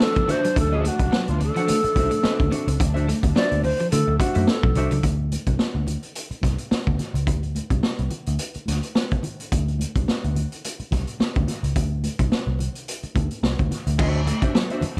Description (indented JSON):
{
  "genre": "funk",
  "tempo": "107 BPM",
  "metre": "4/4",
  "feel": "swing 56% on 16ths",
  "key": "unclear",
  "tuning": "A4 = 440 Hz",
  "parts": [
    { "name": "bright alto flute", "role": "melody", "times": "0.0-5.0 s", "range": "F4 to D5", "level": "-27 LUFS", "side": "equal", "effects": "none" },
    { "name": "hollow-body jazz guitar", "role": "accompaniment", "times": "0.0-5.0, 14.0-14.9 s", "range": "D4 to F#5", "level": "-31 LUFS", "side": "equal", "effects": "none" },
    { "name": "rich studio string section", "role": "sustained chords", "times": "0.0-5.0, 14.0-15.0 s", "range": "E3 to D4", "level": "-38 LUFS", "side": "equal", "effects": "none" },
    { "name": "raw garage drum kit", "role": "drums", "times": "0.0-15.0 s", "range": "crash cymbal, hi-hat, kick drum, snare drum", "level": "-26 LUFS", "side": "equal", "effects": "none" },
    { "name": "congas", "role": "percussion", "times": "0.0-15.0 s", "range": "none", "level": "-36 LUFS", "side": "equal", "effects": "none" },
    { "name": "electric guitar at the edge of break-up", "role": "riff", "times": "0.2-5.0, 14.0-14.9 s", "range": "F3 to D4", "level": "-32 LUFS", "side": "equal", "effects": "analog chorus" },
    { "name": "vintage muted picked electric bass", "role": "bass", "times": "0.6-15.0 s", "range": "B1 to D3", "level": "-26 LUFS", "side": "equal", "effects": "none" }
  ],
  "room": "light reverb",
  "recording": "dark, warm production",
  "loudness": "-23 LUFS",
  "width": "mono",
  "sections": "0.0-5.0 A section; 5.0-14.0 B section; 14.0-15.0 C section",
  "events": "alto flute solo 0.0-5.0",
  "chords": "0.0 D9; 5.0 Csus2; 14.0 D9"
}